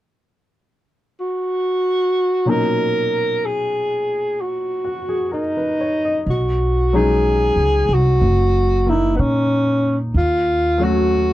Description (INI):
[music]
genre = jazz ballad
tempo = 62 BPM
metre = 4/4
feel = swing 66% on 8ths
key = B major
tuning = A4 = 438 Hz
[part]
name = breathy alto saxophone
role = melody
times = 1.2-11.3 s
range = B3 to A#4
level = -18 LUFS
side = equal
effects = none
[part]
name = clear baby grand piano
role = accompaniment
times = 2.5-11.3 s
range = A#2 to D#5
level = -24 LUFS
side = left 2 dB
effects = none
[part]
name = upright bass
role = bass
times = 6.3-11.3 s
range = F#1 to A#2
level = -19 LUFS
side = equal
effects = none
[sound]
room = little or no reverb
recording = dry, close 1970s-style studio recording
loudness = -16 LUFS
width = side -14 dB against mid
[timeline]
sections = 0.0-2.4 A section; 2.4-6.3 B section; 6.3-11.3 C section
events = none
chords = 0.0 N.C.; 2.4 Bmaj9; 6.3 B69; 10.1 D#m7b5